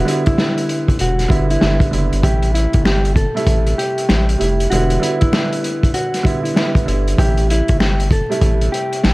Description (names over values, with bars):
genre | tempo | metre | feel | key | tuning
hip hop, boom-bap hip-hop | 97 BPM | 4/4 | swing 62% on 16ths | A minor | A4 = 440 Hz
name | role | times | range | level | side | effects
mellow electric guitar | melody | 0.0-9.1 s | E4 to A4 | -22 LUFS | left 1 dB | high-pass filter, low-pass filter
dark upright piano | accompaniment | 0.0-9.1 s | C3 to E4 | -21 LUFS | right 2 dB | high-pass filter, low-pass filter
round analog bass | bass | 0.0-9.1 s | E1 to A1 | -17 LUFS | equal | none
vintage drum kit | drums | 0.1-9.1 s | hi-hat, kick drum, snare drum | -17 LUFS | equal | none
finger snaps | percussion | 2.9-9.1 s | none | -31 LUFS | left 4 dB | none
room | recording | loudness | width
little or no reverb | vinyl crackle | -14 LUFS | side -21 dB against mid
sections
0.0-9.1 A section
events
none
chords
0.0 Em7; 2.2 Am7; 4.7 Em7; 7.2 Am7